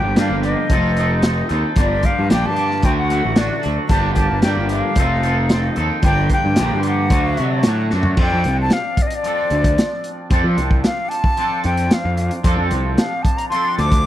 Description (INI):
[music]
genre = psychedelic rock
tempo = 112 BPM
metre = 4/4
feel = straight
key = unclear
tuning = A4 = 440 Hz
[part]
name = silver concert flute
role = melody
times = 0.0-14.1 s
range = D5 to D6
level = -22 LUFS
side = left 2 dB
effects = tape echo
[part]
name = twangy electric guitar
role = riff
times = 0.0-14.1 s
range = G2 to A4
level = -22 LUFS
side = equal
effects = flanger, double-tracked left and right
[part]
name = fuzz picked electric bass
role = bass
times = 0.0-14.0 s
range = F1 to F3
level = -19 LUFS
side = equal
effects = overdrive
[part]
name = crunchy breakbeat drum kit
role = drums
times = 0.2-14.0 s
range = crash cymbal, hi-hat, kick drum, snare drum, toms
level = -18 LUFS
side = equal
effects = none
[sound]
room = studio reverb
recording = dry, close 1970s-style studio recording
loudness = -15 LUFS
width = side -12 dB against mid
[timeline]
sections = 0.0-8.2 A section; 8.2-14.1 B section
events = drum fill 7.9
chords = 0.0 Gm7; 0.7 F7; 1.8 Gm7; 2.8 D; 3.9 Gm7; 5.0 F7; 6.0 Gm7; 7.1 D; 8.2 F6